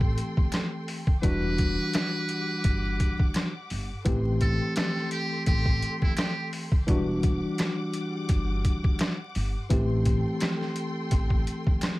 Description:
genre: hip hop, boom-bap hip-hop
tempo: 85 BPM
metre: 4/4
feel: swing 56% on 16ths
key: E minor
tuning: A4 = 440 Hz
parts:
  - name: tine electric piano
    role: accompaniment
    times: 0.0-12.0 s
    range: E3 to G4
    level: -30 LUFS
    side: left 1 dB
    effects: medium stereo tremolo, cassette tape, high-pass filter, low-pass filter
  - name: warm studio string section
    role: sustained chords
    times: 0.0-12.0 s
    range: G3 to D6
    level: -39 LUFS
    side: equal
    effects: high-pass filter, low-pass filter
  - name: upright bass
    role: bass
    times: 0.0-11.4 s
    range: E1 to A1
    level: -29 LUFS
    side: equal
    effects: none
  - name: trip hop sampler-style drum kit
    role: drums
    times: 0.0-12.0 s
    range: hi-hat, kick drum, rim click, snare drum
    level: -26 LUFS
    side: equal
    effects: none
  - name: finger snaps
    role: percussion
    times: 0.5-12.0 s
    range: none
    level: -41 LUFS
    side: right 3 dB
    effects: none
  - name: trumpet with metal mute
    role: melody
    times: 1.2-6.5 s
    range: E4 to B4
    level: -33 LUFS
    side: right 2 dB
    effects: high-pass filter, low-pass filter
room: little or no reverb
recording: vinyl crackle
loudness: -24 LUFS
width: side -19 dB against mid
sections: 0.0-12.0 A section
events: none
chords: 0.0 Am7; 1.2 Em9; 4.1 Am7; 6.9 Em9; 9.7 Am7

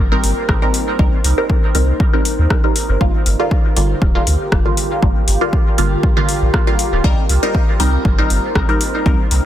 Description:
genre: dub techno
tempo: 119 BPM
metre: 4/4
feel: swing 53% on 16ths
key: unclear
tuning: A4 = 440 Hz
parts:
  - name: deep dark ambient pad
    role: sustained chords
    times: 0.0-9.5 s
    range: Eb4 to D5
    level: -24 LUFS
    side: right 1 dB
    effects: chorus, built-in reverb, sidechain pumping
  - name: pure sine sub bass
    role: bass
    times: 0.0-9.4 s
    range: D1 to Eb2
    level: -16 LUFS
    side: equal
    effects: sidechain pumping
  - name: filtered dub chord stab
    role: stabs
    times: 0.1-9.3 s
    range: D3 to Bb4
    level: -19 LUFS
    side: right 1 dB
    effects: phaser, sidechain pumping, dub echo
  - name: deep house drum kit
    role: drums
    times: 0.2-9.4 s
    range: hi-hat, rim click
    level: -21 LUFS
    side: left 2 dB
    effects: overdrive
  - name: electronic kick drum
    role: drums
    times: 0.5-9.2 s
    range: none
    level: -16 LUFS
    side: equal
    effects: overdrive
room: light reverb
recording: dense, heavily limited modern master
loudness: -13 LUFS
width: side -12 dB against mid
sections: 0.0-9.5 A section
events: none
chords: 0.0 Cm7; 3.0 Gm7; 7.0 Cm7

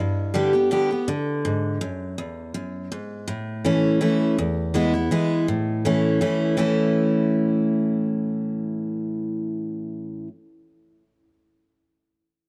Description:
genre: bluegrass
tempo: 164 BPM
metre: 3/4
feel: straight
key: A major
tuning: A4 = 439 Hz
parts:
  - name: picked steel-string acoustic guitar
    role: solo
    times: 0.0-10.3 s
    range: E2 to G4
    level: -23 LUFS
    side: equal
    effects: none
room: light reverb, small room ambience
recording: dry, close 1970s-style studio recording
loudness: -23 LUFS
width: mono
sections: 0.0-4.4 A section; 4.4-6.6 B section; 6.6-8.8 C section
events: none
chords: 0.0 G; 1.1 D; 2.2 E; 3.3 A; 4.4 E; 5.5 A

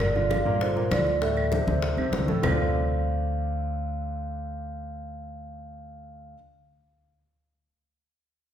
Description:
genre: Afro-Cuban jazz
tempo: 197 BPM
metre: 4/4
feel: straight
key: D minor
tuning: A4 = 440 Hz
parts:
  - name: vibraphone with soft mallets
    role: melody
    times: 0.0-6.3 s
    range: C5 to F5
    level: -31 LUFS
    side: equal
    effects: none
  - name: upright bass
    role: bass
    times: 0.0-6.3 s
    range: G1 to G2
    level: -30 LUFS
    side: equal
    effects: none
  - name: bongos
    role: percussion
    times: 0.0-2.5 s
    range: none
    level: -33 LUFS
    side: left 4 dB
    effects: none
  - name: claves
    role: percussion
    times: 0.0-2.5 s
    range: none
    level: -37 LUFS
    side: right 3 dB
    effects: none
  - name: congas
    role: percussion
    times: 0.0-2.5 s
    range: none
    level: -31 LUFS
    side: left 2 dB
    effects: none
  - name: warm baby grand piano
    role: accompaniment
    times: 0.1-6.3 s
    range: A2 to Bb4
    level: -30 LUFS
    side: right 2 dB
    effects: none
room: wet recital hall reverb, RT60 1.7 s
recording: recorded in a church or concert hall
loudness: -24 LUFS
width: side -9 dB against mid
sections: 0.0-2.4 A section; 2.4-4.9 B section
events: none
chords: 0.0 Gm7; 1.2 Dsus2; 2.4 Dm7

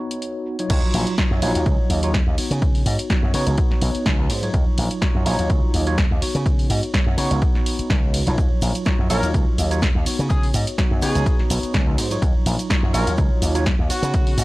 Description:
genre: filtered disco house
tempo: 125 BPM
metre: 4/4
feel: swing 54% on 16ths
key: Eb minor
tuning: A4 = 440 Hz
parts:
  - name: tine electric piano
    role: accompaniment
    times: 0.0-14.4 s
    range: Gb3 to Db5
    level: -26 LUFS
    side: equal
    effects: medium stereo tremolo, phaser, sidechain pumping, low-pass filter
  - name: punchy analog drum machine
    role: drums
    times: 0.1-14.4 s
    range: crash cymbal, hi-hat, ride cymbal, snare drum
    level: -27 LUFS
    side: equal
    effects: sidechain pumping on hats, sidechain pumping on cymbals
  - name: tube shaker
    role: percussion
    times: 0.1-0.7, 8.4-14.4 s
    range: none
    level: -35 LUFS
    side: right 5 dB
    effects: sidechain pumping on perc, low-pass filter on perc
  - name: slap bass with an envelope filter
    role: bass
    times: 0.7-14.4 s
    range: Bb1 to Db3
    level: -22 LUFS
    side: equal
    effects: sidechain pumping, low-pass filter
  - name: electronic kick drum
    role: drums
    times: 0.7-14.2 s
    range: none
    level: -20 LUFS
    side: equal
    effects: none
  - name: clear horn section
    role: melody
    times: 9.1-14.4 s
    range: Gb4 to Bb4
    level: -29 LUFS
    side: equal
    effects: sidechain pumping, low-pass filter
room: little or no reverb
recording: dry, gritty hardware recording, transformer saturation, cassette tape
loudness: -17 LUFS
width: side -20 dB against mid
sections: 0.7-14.4 A section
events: drop 0.7-14.4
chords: 0.0 Db9sus4; 0.7 Ebm9; 2.4 Db9sus4; 4.5 Ebm9; 6.2 Db9sus4; 8.4 Ebm9; 10.1 Db9sus4; 12.2 Ebm9; 13.9 Db9sus4

